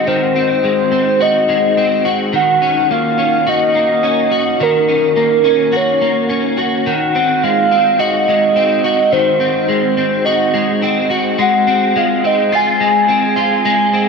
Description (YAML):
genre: dream pop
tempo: 106 BPM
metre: 4/4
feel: straight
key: Ab mixolydian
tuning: A4 = 440 Hz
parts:
  - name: soft octave-layered synth lead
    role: melody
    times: 0.0-14.1 s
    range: Bb4 to Ab5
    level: -14 LUFS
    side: right 1 dB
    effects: chorus, phaser, ping-pong delay
  - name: electric guitar at the edge of break-up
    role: arpeggios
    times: 0.0-14.1 s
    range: Eb3 to Gb4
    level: -16 LUFS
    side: left 1 dB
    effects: ensemble chorus, ping-pong delay
room: moderate huge ambient reverb, RT60 4.2 s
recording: none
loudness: -12 LUFS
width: side -4 dB against mid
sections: 0.0-14.1 A section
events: none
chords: 0.0 Ab7; 2.3 Gb6; 6.9 Ab7; 11.4 Ab6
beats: | 0.07 0.64 1.20 1.77 | 2.33 2.90 3.46 4.03 | 4.60 5.16 5.73 6.29 | 6.86 7.43 7.99 8.56 | 9.12 9.69 10.26 10.82 | 11.39 11.96 12.52 13.09 | 13.65